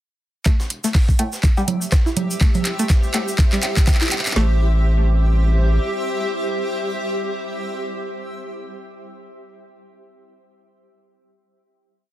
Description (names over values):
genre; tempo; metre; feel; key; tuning
minimal techno; 123 BPM; 4/4; swing 57% on 16ths; A minor; A4 = 440 Hz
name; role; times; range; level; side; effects
string-like resonator pluck; riff; 0.5-4.6 s; G3 to E4; -26 LUFS; equal; chorus, sidechain pumping, tape echo
breakbeat sampler-style drum kit; drums; 0.5-4.4 s; hi-hat, snare drum, tambourine; -35 LUFS; left 1 dB; sidechain pumping on perc, high-pass filter on perc, high-pass filter on snare, sidechain pumping on hats, high-pass filter on hats, high-pass filter on room
garage drum kit; drums; 0.5-4.5 s; kick drum, snare drum; -15 LUFS; equal; overdrive
garage drum kit; drums; 0.5-4.4 s; handclaps, hi-hat, rim click; -24 LUFS; equal; overdrive
tube shaker; percussion; 0.5-4.3 s; none; -31 LUFS; right 2 dB; none
granular cloud pad; texture; 1.8-8.7 s; G4 to E5; -26 LUFS; equal; built-in reverb, sidechain pumping
saturated sub bass; bass; 0.6-5.8 s; E1 to A2; -18 LUFS; equal; sidechain pumping, high-pass filter
woodblock and congas; percussion; 1.2-4.2 s; none; -25 LUFS; right 4 dB; none
room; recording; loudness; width
light reverb; dense, heavily limited modern master; -17 LUFS; side -14 dB against mid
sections
0.5-4.4 build; 4.4-8.3 final chord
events
build-up 0.5-4.4; drum fill 0.5-4.4; filter sweep on synth pluck 0.5-4.4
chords
0.5 Am